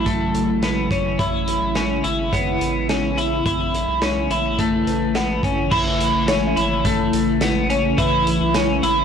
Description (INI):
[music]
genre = dream pop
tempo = 106 BPM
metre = 4/4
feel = straight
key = unclear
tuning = A4 = 444 Hz
[part]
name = ethereal airy pad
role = sustained chords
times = 0.0-9.0 s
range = C#3 to E4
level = -23 LUFS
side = right 2 dB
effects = ensemble chorus, built-in reverb
[part]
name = twelve-string electric guitar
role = arpeggios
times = 0.0-9.0 s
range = A3 to E4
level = -20 LUFS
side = left 2 dB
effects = analog chorus, ping-pong delay
[part]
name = saturated sub bass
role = bass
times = 0.0-9.0 s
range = G#1 to B1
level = -27 LUFS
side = right 1 dB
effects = transformer saturation
[part]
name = vintage drum kit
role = drums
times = 0.1-9.0 s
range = crash cymbal, hi-hat, kick drum, snare drum, tambourine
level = -25 LUFS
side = equal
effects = soft clipping on kick
[part]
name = soft synth bell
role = texture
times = 1.2-9.0 s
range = B4 to E5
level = -34 LUFS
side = left 3 dB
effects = chorus, phaser, ping-pong delay
[sound]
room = moderate plate reverb, RT60 2.6 s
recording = blown-out, overdriven recording, overdrive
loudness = -17 LUFS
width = side -7 dB against mid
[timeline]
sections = 0.0-5.7 A section; 5.7-9.0 B section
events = none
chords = 0.0 Dadd9 (rootless); 1.2 C#m7